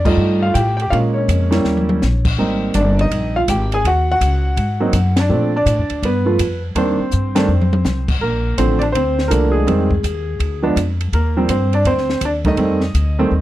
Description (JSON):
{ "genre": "jazz piano trio", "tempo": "165 BPM", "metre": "4/4", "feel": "swing 64% on 8ths", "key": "Bb major", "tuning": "A4 = 439 Hz", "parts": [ { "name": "warm concert grand piano", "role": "melody", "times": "0.0-13.4 s", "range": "D3 to Ab5", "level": "-17 LUFS", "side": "right 1 dB", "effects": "none" }, { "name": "upright bass", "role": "bass", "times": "0.0-13.4 s", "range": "G1 to Bb2", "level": "-18 LUFS", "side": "equal", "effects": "none" }, { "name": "compact cocktail drum kit", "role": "drums", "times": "0.1-13.1 s", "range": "crash cymbal, hi-hat, kick drum, ride cymbal, snare drum, toms", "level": "-23 LUFS", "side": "left 1 dB", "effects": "none" } ], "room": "little or no reverb", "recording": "dry, close 1970s-style studio recording", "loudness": "-14 LUFS", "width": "side -14 dB against mid", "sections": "0.0-8.2 A section; 8.2-13.4 B section", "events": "band accent 0.0, 5.1, 7.3; drum fill 1.7-2.0, 7.1-7.9", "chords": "0.0 Ebadd9(#11); 0.9 Bbm7; 1.7 Eb7b9; 2.4 Abmaj9; 3.8 Ebm7; 4.6 Ab7(no3); 5.3 Bbmaj9; 6.0 G7; 6.8 Cm7; 7.5 F5; 8.2 Bbmaj9; 9.7 Fm7; 10.4 Ddim; 11.1 Eb6; 12.6 F9", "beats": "0.19 0.56 | 0.92 1.29 1.65 2.02 | 2.38 2.75 3.11 3.48 | 3.84 4.21 4.57 4.94 | 5.30 5.67 6.03 6.39 | 6.76 7.12 7.49 7.85 | 8.21 8.58 8.94 9.31 | 9.67 10.04 10.40 10.77 | 11.13 11.49 11.86 12.22 | 12.59 12.95 13.31" }